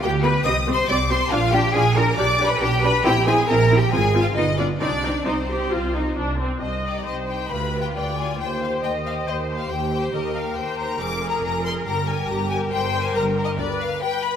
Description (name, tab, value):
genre	quick classical-period movement for string orchestra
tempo	138 BPM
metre	4/4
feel	rubato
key	C minor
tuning	A4 = 436 Hz
part	bright symphonic violin section	melody	0.0-14.4 s	C5 to Eb6	-28 LUFS	left 7 dB	none
part	bright symphonic violin section	second line	0.0-14.3 s	Eb4 to Eb6	-27 LUFS	left 3 dB	none
part	clear symphonic viola section	accompaniment	0.0-14.4 s	B3 to Eb5	-25 LUFS	left 1 dB	none
part	rich symphonic cello section	bass	0.0-13.9 s	C2 to Eb5	-25 LUFS	right 1 dB	none
part	rich symphonic double bass section	bass	0.0-13.9 s	F1 to Eb2	-25 LUFS	right 3 dB	none
room	moderate scoring stage reverb, RT60 2.1 s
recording	none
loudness	-19 LUFS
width	side -8 dB against mid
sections	0.0-6.6 A section; 6.6-14.4 A section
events	none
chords	0.4 Cm; 1.3 Bb; 2.2 G/B; 3.0 C7/Bb; 3.9 Fm/Ab; 4.4 G7; 4.8 Cm; 7.5 G7/D; 8.4 Cm/Eb; 10.1 Eb; 11.0 Bb5/F; 11.9 Gmadd11; 13.6 G/D